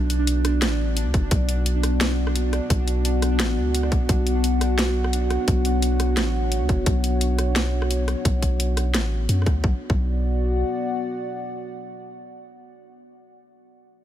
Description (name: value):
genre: half-time drum and bass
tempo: 173 BPM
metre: 4/4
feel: half-time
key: B minor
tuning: A4 = 441 Hz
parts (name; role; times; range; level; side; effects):
- dark analog pad; sustained chords; 0.0-13.2 s; B3 to F#5; -27 LUFS; left 2 dB; chorus, sidechain pumping
- long sustained 808-style bass; bass; 0.0-10.6 s; F#1 to F#2; -22 LUFS; equal; none
- pulsing gated texture; texture; 0.0-9.6 s; D4; -31 LUFS; right 6 dB; chorus, built-in reverb
- drum and bass drum kit; drums; 0.1-9.5 s; hi-hat, rim click, snare drum; -28 LUFS; equal; overdrive
- electronic kick drum; drums; 1.1-10.0 s; none; -21 LUFS; equal; overdrive
room: little or no reverb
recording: none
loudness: -20 LUFS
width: side -11 dB against mid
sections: 0.0-9.6 A section; 9.6-12.4 B section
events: filter sweep on 808-style bass 0.0-9.6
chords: 0.0 Bm